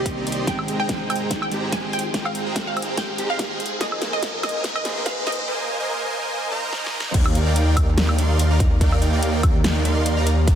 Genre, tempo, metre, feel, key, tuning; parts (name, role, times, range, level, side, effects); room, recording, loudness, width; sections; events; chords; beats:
future bass; 144 BPM; 4/4; swing 54% on 16ths, half-time; A4 = 439 Hz
wide unison pluck; melody; 0.0-5.4 s; G4 to Ab5; -29 LUFS; right 1 dB; wide subtle chorus, sidechain pumping, tape echo
mellow electric guitar; accompaniment; 0.0-5.5 s; Eb3 to G5; -33 LUFS; right 2 dB; sidechain pumping
ethereal airy pad; sustained chords; 0.0-10.6 s; C3 to G5; -36 LUFS; right 2 dB
supersaw chords; riff; 0.0-10.6 s; Ab3 to C6; -26 LUFS; right 1 dB; cassette tape, sidechain pumping
wide detuned saw bass; bass; 0.0-10.6 s; Ab1 to Eb2; -22 LUFS; equal; chorus, sidechain pumping
riser and swell; sound effects; 0.1-7.1 s; -32 LUFS; left 1 dB
big-room dance drum kit; drums; 0.1-10.6 s; crash cymbal, hi-hat, snare drum, woodblock; -28 LUFS; equal
electronic kick drum; drums; 0.1-10.6 s; -21 LUFS; equal
light reverb; dense, heavily limited modern master, high-pass filter; -19 LUFS; side -9 dB against mid
0.0-7.1 A section; 7.1-10.6 B section
build-up 0.0-7.1; filter sweep 0.0-7.1; riser 0.1-5.5; drum fill 0.5-5.5, 6.7-7.1; swell 6.4-7.1; drop 7.1-10.6
0.5 Abmaj7; 3.6 Bb7sus4; 7.1 Ebmaj7
0.06 | 0.48 0.89 1.31 1.73 | 2.14 2.56 2.98 3.39 | 3.81 4.23 4.64 5.06 | 5.48 5.89 6.31 6.73 | 7.14 7.56 7.98 8.39 | 8.81 9.23 9.64 10.06 | 10.48